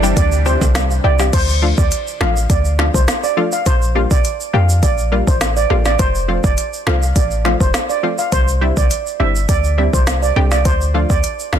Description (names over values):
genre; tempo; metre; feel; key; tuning
dancehall; 103 BPM; 4/4; straight; unclear; A4 = 440 Hz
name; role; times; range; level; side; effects
punchy chord stab; accompaniment; 0.0-11.6 s; F3 to G4; -20 LUFS; left 2 dB; chorus
lush unison pad; sustained chords; 0.0-1.3 s; C3 to D4; -26 LUFS; equal; chorus, phaser, sidechain pumping
clean 808-style bass; bass; 0.0-11.6 s; F1 to F2; -16 LUFS; equal; none
tube shaker and timbales; percussion; 0.0-11.5 s; none; -27 LUFS; right 6 dB; none
steel pan; melody; 0.2-11.6 s; C5 to F5; -20 LUFS; right 3 dB; digital delay
organic electronic drum kit; drums; 0.2-11.6 s; crash cymbal, hi-hat, kick drum, rim click, snare drum; -17 LUFS; equal; overdrive
room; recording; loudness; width
little or no reverb; dense, heavily limited modern master; -13 LUFS; side -9 dB against mid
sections
0.0-1.3 A section; 1.3-11.6 B section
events
none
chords
0.0 Cadd9; 1.3 Dm; 3.7 Bb6; 6.0 F; 8.3 Cadd9; 10.7 Dm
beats
0.17 0.75 | 1.33 1.92 2.50 3.08 | 3.66 4.25 4.83 5.41 | 5.99 6.58 7.16 7.74 | 8.32 8.91 9.49 10.07 | 10.65 11.24